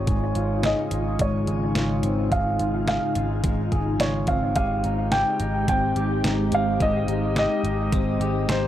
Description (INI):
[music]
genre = dream pop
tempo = 107 BPM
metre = 4/4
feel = straight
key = Ab major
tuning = A4 = 440 Hz
[part]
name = felt-muted upright piano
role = melody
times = 0.0-8.7 s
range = C5 to G5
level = -26 LUFS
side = right 1 dB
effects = low-pass filter, tape echo
[part]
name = ethereal airy pad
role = sustained chords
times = 0.0-8.7 s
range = Db3 to G4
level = -28 LUFS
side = equal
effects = ensemble chorus, built-in reverb, low-pass filter
[part]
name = electric guitar at the edge of break-up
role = arpeggios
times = 0.0-8.7 s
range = Ab2 to Ab4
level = -28 LUFS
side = left 2 dB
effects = wide subtle chorus, low-pass filter, tape echo
[part]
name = vintage muted picked electric bass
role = bass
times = 0.0-8.7 s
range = Ab1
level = -27 LUFS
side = equal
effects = none
[part]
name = detuned 8-bit digital drum machine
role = drums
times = 0.1-8.6 s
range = hi-hat, kick drum, snare drum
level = -27 LUFS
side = equal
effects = overdrive
[sound]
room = light reverb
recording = dry, gritty hardware recording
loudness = -21 LUFS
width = side -12 dB against mid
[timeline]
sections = 0.0-8.7 A section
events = filter sweep 0.0-8.7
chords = 0.1 Dbmaj7/Ab; 4.6 Abmaj7